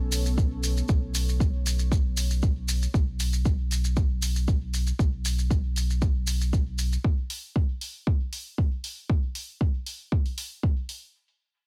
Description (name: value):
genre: dub techno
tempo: 117 BPM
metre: 4/4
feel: straight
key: unclear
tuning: A4 = 440 Hz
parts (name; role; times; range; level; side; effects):
- dark analog pad; sustained chords; 0.0-2.9 s; B3 to C#5; -40 LUFS; equal; chorus, sidechain pumping
- warm sub bass; bass; 0.0-7.0 s; B1; -29 LUFS; equal; sidechain pumping
- electronic hi-hat; drums; 0.1-11.0 s; none; -38 LUFS; equal; none
- maracas; percussion; 0.1-7.0 s; none; -36 LUFS; equal; none
- electronic kick drum; drums; 0.4-10.7 s; none; -27 LUFS; equal; none
room: little or no reverb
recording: none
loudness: -27 LUFS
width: mono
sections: 0.0-11.1 A section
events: none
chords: 0.0 B7sus2